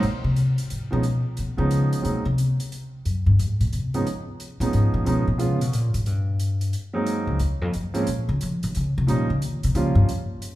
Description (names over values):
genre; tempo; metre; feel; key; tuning
jazz piano trio; 179 BPM; 3/4; swing 64% on 8ths; unclear; A4 = 440 Hz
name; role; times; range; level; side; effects
upright bass; bass; 0.0-10.0 s; Db2 to F3; -22 LUFS; left 1 dB; none
hi-hat; drums; 0.0-10.5 s; none; -40 LUFS; equal; none
warm grand piano; melody; 0.9-10.1 s; F3 to F4; -26 LUFS; right 2 dB; none
room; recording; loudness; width
moderate recital hall reverb, RT60 1.7 s; recorded in a church or concert hall; -21 LUFS; side -16 dB against mid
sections
0.0-10.6 A section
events
upright bass solo 0.0-10.6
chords
0.0 Ab; 1.0 Db7; 2.0 Ab7; 4.0 Db7; 6.1 N.C.; 7.1 Ab7; 8.1 Bbm; 9.1 Eb7